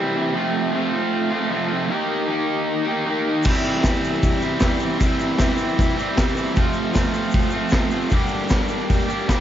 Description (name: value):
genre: garage rock duo or trio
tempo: 154 BPM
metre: 4/4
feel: straight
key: unclear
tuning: A4 = 438 Hz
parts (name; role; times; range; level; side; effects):
- raw garage guitar; riff; 0.0-9.4 s; F2 to G4; -20 LUFS; right 1 dB; overdrive
- vintage drum kit; drums; 3.4-9.4 s; crash cymbal, hi-hat, kick drum, snare drum; -21 LUFS; equal; none
- egg shaker; percussion; 3.4-9.4 s; none; -42 LUFS; left 5 dB; none
room: light reverb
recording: nothing above 7.6 kHz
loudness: -18 LUFS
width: side -10 dB against mid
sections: 0.0-9.4 A section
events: none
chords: 0.4 F; 1.9 Eb; 3.5 C; 6.6 F; 8.1 Gm